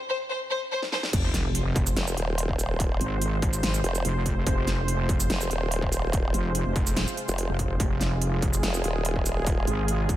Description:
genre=heavy wobble dubstep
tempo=144 BPM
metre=4/4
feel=half-time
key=F minor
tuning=A4 = 440 Hz
part: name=warm studio violin section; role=melody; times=0.1-1.0 s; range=C5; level=-29 LUFS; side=left 2 dB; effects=digital delay
part: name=big-room dance drum kit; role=drums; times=0.8-10.2 s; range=crash cymbal, hi-hat, shaker, snare drum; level=-31 LUFS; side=right 1 dB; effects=high-pass filter on snare, high-pass filter on hats, high-pass filter on perc, high-pass filter on cymbals
part: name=supersaw pad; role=sustained chords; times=1.1-10.2 s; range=C3 to C5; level=-33 LUFS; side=right 1 dB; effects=sidechain pumping, low-pass filter
part: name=wobble bass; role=bass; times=1.1-10.2 s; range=F1 to Ab1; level=-26 LUFS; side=equal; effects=chorus, overdrive
part: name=electronic kick drum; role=drums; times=1.1-10.2 s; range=none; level=-28 LUFS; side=equal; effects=distortion
part: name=sub drop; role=sound effects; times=1.1-2.8 s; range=none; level=-33 LUFS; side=equal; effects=none
part: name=formant-sweep wobble bass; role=bass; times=2.0-9.7 s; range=Eb1 to F1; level=-27 LUFS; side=equal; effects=chorus, overdrive
room=little or no reverb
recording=none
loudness=-24 LUFS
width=side -14 dB against mid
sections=0.0-1.1 A section; 1.1-10.2 B section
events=break 0.0-1.1; build-up 0.0-1.1; drum fill 0.8-1.1; drop 1.1-10.2; impact 1.1-2.8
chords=0.0 N.C.; 1.1 Fm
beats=0.30 0.72 | 1.13 1.55 1.97 2.38 | 2.80 3.22 3.63 4.05 | 4.47 4.88 5.30 5.72 | 6.13 6.55 6.97 7.38 | 7.80 8.22 8.63 9.05 | 9.47 9.88

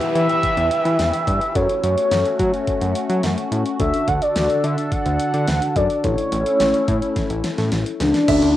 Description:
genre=synth-pop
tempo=107 BPM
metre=4/4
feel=straight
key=unclear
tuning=A4 = 440 Hz
part: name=mellow horn-like synth lead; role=melody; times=0.0-8.6 s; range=D4 to F#5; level=-20 LUFS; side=equal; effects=chorus, phaser, cassette tape, tape echo, plate reverb
part: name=FM electric piano with soft pad layer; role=accompaniment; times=0.0-8.6 s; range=C#4 to B4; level=-29 LUFS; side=left 6 dB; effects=chorus, cassette tape, plate reverb
part: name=phased analog pad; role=sustained chords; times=0.0-8.3 s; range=D3 to B4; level=-24 LUFS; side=left 1 dB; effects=phaser, chorus, cassette tape, plate reverb
part: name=pop drum kit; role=drums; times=0.0-8.6 s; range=crash cymbal, hi-hat, kick drum, snare drum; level=-26 LUFS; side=equal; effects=cassette tape
part: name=downlifter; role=sound effects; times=0.0-3.8, 8.3-8.6 s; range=none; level=-34 LUFS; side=equal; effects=none
part: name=fat analog bass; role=bass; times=0.2-8.5 s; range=A1 to F#3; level=-22 LUFS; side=equal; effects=none
part: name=clear concert grand piano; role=second line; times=8.3-8.5 s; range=E5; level=-23 LUFS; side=right 9 dB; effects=cassette tape
room=moderate studio reverb, RT60 0.5 s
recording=home recording on cassette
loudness=-17 LUFS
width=side -13 dB against mid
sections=0.0-8.3 A section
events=drum fill 7.2-8.3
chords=0.0 Em; 1.6 F#m; 3.8 D; 6.0 A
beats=0.43 0.99 | 1.55 2.11 2.67 3.24 | 3.80 4.36 4.92 5.48 | 6.04 6.60 7.16 7.72 | 8.28

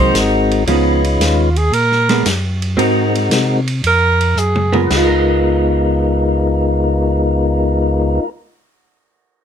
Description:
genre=soul jazz organ trio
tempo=114 BPM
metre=4/4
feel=swing 69% on 8ths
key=Db mixolydian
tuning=A4 = 441 Hz
part: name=breathy alto saxophone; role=melody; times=0.0-4.8 s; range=F4 to C5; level=-15 LUFS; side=right 4 dB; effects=none
part: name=percussive tonewheel organ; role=melody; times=0.0-8.3 s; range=Ab3 to Cb5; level=-16 LUFS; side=left 3 dB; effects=slow rotary speaker
part: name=vintage hollow-body jazz guitar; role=accompaniment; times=0.0-8.4 s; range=F3 to Bb4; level=-18 LUFS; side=right 4 dB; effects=none
part: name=mellow tonewheel organ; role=bass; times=0.0-8.2 s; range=Ab1 to C3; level=-17 LUFS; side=equal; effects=slow rotary speaker
part: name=vintage drum kit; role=drums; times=0.1-5.1 s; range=crash cymbal, hi-hat, ride cymbal, snare drum, toms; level=-21 LUFS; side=equal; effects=none
room=light reverb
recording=close, detailed microphones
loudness=-12 LUFS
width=side -8 dB against mid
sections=0.0-4.9 A section; 4.9-9.1 B section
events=alto saxophone solo 0.0-4.9; drum fill 4.4-4.9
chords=0.0 Ab9; 0.7 Db9; 1.7 Bb7b9; 2.8 Ab9; 4.9 Db13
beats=0.15 | 0.68 1.20 1.73 2.26 | 2.79 3.31 3.84 4.37 | 4.90 5.43 5.96 6.49 | 7.02 7.55 8.08

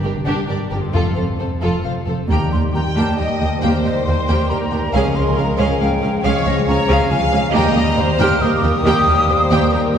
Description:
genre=cinematic, heroic adventure film score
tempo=137 BPM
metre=3/4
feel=straight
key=unclear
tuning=A4 = 440 Hz
part: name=warm symphonic violin section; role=melody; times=0.0-10.0 s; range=G4 to G5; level=-26 LUFS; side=left 3 dB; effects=none
part: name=warm symphonic violin section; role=second line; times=0.0-10.0 s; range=D4 to G5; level=-24 LUFS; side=left 2 dB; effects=none
part: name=warm symphonic viola section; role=accompaniment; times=0.0-10.0 s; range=Bb3 to A4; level=-23 LUFS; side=right 2 dB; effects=none
part: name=concert harp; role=arpeggios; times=0.0-10.0 s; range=F2 to F5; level=-27 LUFS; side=left 4 dB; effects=none
part: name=warm symphonic cello section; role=bass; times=0.0-10.0 s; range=Db2 to G2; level=-22 LUFS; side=right 2 dB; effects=none
part: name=warm symphonic double bass section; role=bass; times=0.0-10.0 s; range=F1 to Eb2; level=-22 LUFS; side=right 1 dB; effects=none
part: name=timpani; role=percussion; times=0.9-1.6 s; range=F2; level=-25 LUFS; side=left 1 dB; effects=none
part: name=hollow concert flute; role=second line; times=2.3-9.9 s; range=Eb5 to F6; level=-22 LUFS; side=left 1 dB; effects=none
part: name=bright trombone section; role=sustained chords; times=2.3-10.0 s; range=Eb3 to Bb3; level=-23 LUFS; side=right 2 dB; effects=none
room=wet church reverb, RT60 3.3 s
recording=recorded in a church or concert hall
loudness=-14 LUFS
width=side -8 dB against mid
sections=0.0-2.3 A section; 2.3-10.0 B section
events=none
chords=0.0 Gm; 0.9 F; 2.3 Eb; 4.9 Db; 7.5 Eb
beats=0.04 0.49 | 0.94 1.40 1.85 | 2.30 2.74 3.18 | 3.62 4.06 4.50 | 4.94 5.37 5.81 | 6.24 6.67 7.11 | 7.54 7.98 8.41 | 8.85 9.29 9.73

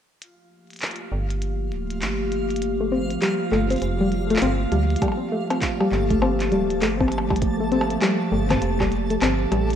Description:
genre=IDM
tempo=100 BPM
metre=4/4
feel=swing 62% on 16ths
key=G minor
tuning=A4 = 439 Hz
part: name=warbly tape-like pad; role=sustained chords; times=0.9-9.8 s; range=C3 to G4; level=-26 LUFS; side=right 1 dB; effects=chorus, built-in reverb
part: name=glitchy drum kit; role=drums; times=0.2-9.8 s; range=handclaps, hi-hat, percussion blips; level=-29 LUFS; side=equal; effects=none
part: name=backwards swelling texture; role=texture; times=0.2-9.8 s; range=F4 to A5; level=-32 LUFS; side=equal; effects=built-in reverb
part: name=metallic FM bass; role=bass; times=1.1-9.8 s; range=D1 to D2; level=-26 LUFS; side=right 1 dB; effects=none
part: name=soft round pluck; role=arpeggios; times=2.8-9.6 s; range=G3 to C4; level=-23 LUFS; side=left 2 dB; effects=chorus, cassette tape, tape echo
part: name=electronic kick drum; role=drums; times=5.0-8.9 s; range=none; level=-26 LUFS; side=right 1 dB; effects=none
room=light reverb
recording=rough home demo mix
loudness=-20 LUFS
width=side -9 dB against mid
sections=0.2-5.0 A section; 5.0-9.8 B section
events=filter sweep on FM bass 0.2-5.0; filter sweep on ambient pad 0.2-5.0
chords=0.2 Gm9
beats=| 0.22 0.82 1.42 2.02 | 2.62 3.22 3.82 4.42 | 5.02 5.62 6.22 6.82 | 7.42 8.02 8.62 9.22

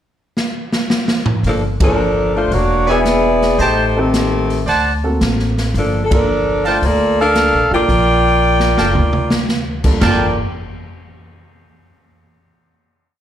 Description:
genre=jazz, big band swing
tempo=112 BPM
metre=4/4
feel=swing 68% on 8ths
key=G minor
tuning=A4 = 439 Hz
part: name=swinging big-band drum kit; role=drums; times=0.4-10.2 s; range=crash cymbal, hi-hat, kick drum, ride cymbal, snare drum, toms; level=-19 LUFS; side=equal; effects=none
part: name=upright bass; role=bass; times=1.4-10.3 s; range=E1 to D2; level=-19 LUFS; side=equal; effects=none
part: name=warm saxophone section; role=melody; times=1.5-10.4 s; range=Eb3 to G5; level=-15 LUFS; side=left 1 dB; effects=plate reverb, slapback echo
part: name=warm baby grand piano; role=accompaniment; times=1.8-10.3 s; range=G2 to A4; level=-22 LUFS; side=right 3 dB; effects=plate reverb, slapback echo
part: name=bright trumpet section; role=stabs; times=2.9-10.3 s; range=Bb4 to A5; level=-18 LUFS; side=right 3 dB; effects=plate reverb, slapback echo
room=light reverb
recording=live gig heard through the venue's PA, club reverb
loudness=-13 LUFS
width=side -10 dB against mid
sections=0.0-1.4 pickup bar; 1.4-10.0 A section; 10.0-12.1 final chord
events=drum fill 0.4-1.4, 8.4-9.5; band accent 1.7, 6.0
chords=0.0 N.C.; 1.4 Gm9; 2.5 E7; 3.6 Am7b5; 4.7 D7b13; 5.7 Gm9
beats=0.37 0.90 | 1.44 1.98 2.52 3.06 | 3.60 4.13 4.67 5.21 | 5.74 6.28 6.82 7.35 | 7.88 8.42 8.95 9.48 | 10.01

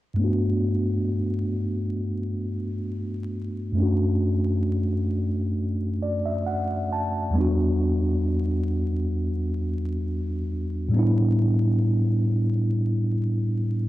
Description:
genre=hip hop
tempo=67 BPM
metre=4/4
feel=swing 55% on 16ths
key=unclear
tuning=A4 = 440 Hz
part: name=mellow tine electric piano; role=accompaniment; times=0.1-13.9 s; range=E2 to A5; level=-22 LUFS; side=equal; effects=medium stereo tremolo, cassette tape, low-pass filter
room=moderate studio reverb, RT60 0.6 s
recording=dark, warm production, vinyl crackle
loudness=-22 LUFS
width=side -16 dB against mid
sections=0.2-13.9 A section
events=filter sweep on tine electric piano 0.2-13.9; tine electric piano fill 5.6-7.3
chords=0.2 Gmaj9; 3.8 Dmaj9/F#; 7.3 Em7; 10.9 A9sus4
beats=| 0.18 1.08 1.98 2.87 | 3.77 4.66 5.56 6.45 | 7.35 8.24 9.14 10.03 | 10.93 11.82 12.72 13.62

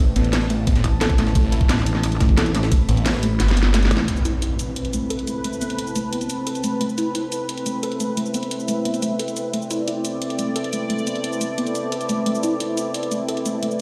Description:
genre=dark technical drum and bass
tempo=176 BPM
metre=4/4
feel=straight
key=A minor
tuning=A4 = 440 Hz
part: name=soft round pluck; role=arpeggios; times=0.0-13.7 s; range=A3 to A4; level=-29 LUFS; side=equal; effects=subtle chorus, sidechain pumping, tape echo
part: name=deep dark ambient pad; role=texture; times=0.0-13.8 s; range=C4 to B5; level=-31 LUFS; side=equal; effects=chorus, built-in reverb, sidechain pumping
part: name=phased detuned saw bass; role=bass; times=0.2-3.9 s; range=G1 to A1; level=-22 LUFS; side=equal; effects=phaser, tube saturation
part: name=drum and bass drum kit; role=drums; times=0.2-13.8 s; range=cabasa, hi-hat, snare drum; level=-30 LUFS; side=equal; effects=none
part: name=jungle sampler-style drum kit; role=drums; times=0.2-4.1 s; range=hi-hat, ride cymbal, snare drum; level=-35 LUFS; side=equal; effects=high-pass filter on cymbals, high-pass filter on snare, high-pass filter on hats
part: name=electronic kick drum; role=drums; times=0.7-2.8 s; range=none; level=-21 LUFS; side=equal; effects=overdrive
part: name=pulsing pluck wobble bass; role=bass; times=0.8-4.1 s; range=A1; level=-23 LUFS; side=equal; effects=chorus
part: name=sweeping resonant pad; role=sustained chords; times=4.1-13.8 s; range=A3 to D5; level=-30 LUFS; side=equal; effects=chorus, sidechain pumping
part: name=impact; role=sound effects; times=4.1-5.4 s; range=none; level=-30 LUFS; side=equal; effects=none
room=moderate lush hall reverb, RT60 1.9 s, digital ambience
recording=played on a big sound system in a bare room, large studio reverb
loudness=-22 LUFS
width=mono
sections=0.0-4.1 A section; 4.1-13.8 B section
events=kick drops out 3.4-4.1; drum fill 3.4-4.1; band accent 4.0; impact 4.1-5.4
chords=0.0 Amadd9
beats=0.33 0.67 1.01 | 1.35 1.69 2.04 2.38 | 2.72 3.06 3.40 3.74 | 4.08 4.42 4.76 5.10 | 5.44 5.79 6.13 6.47 | 6.81 7.15 7.49 7.83 | 8.17 8.51 8.85 9.19 | 9.54 9.88 10.22 10.56 | 10.90 11.24 11.58 11.92 | 12.26 12.60 12.94 13.29 | 13.63

